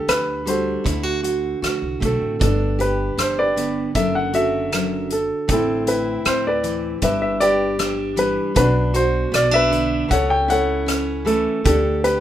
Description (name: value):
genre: acoustic folk-pop ballad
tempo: 78 BPM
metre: 4/4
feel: straight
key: G major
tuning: A4 = 441 Hz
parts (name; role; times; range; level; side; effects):
- warm grand piano; melody; 0.0-12.2 s; C4 to G5; -20 LUFS; equal; none
- fingerpicked steel-string acoustic guitar; accompaniment; 0.0-12.2 s; F#2 to G4; -23 LUFS; right 1 dB; none
- upright bass; bass; 0.1-12.2 s; F#1 to D2; -26 LUFS; equal; none
- loose indie drum kit; drums; 0.1-12.2 s; hi-hat, kick drum, rim click; -24 LUFS; right 1 dB; none
room: little or no reverb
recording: minimal, uncompressed stereo recording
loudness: -17 LUFS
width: side -11 dB against mid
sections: 0.0-12.2 A section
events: none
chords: 0.0 G5/D; 0.8 D7; 2.4 G; 4.0 D/F#; 5.5 Amadd9; 7.0 Em7/G; 8.6 Bm; 10.1 A/C#; 11.6 Dsus4